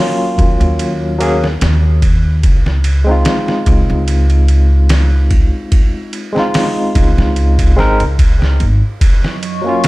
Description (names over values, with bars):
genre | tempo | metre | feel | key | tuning
trip hop | 73 BPM | 4/4 | swing 54% on 16ths | unclear | A4 = 438 Hz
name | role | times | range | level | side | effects
barky tine electric piano | accompaniment | 0.0-9.9 s | Gb3 to Bb4 | -17 LUFS | equal | overdrive, tremolo, vintage 12-bit sampler grit, tape echo
upright bass | bass | 0.4-8.8 s | Ab1 to Eb2 | -12 LUFS | equal | none
trip hop sampler-style drum kit | drums | 0.4-9.9 s | hi-hat, kick drum, ride cymbal, snare drum | -15 LUFS | equal | small room reverb
dark analog pad | sustained chords | 9.2-9.9 s | Gb3 to Db6 | -20 LUFS | right 1 dB | chorus
room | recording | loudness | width
digital ambience | none | -10 LUFS | side -20 dB against mid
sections
0.0-9.0 A section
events
none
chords
0.0 Ebm7; 2.4 Dbmaj9; 9.0 Ebm7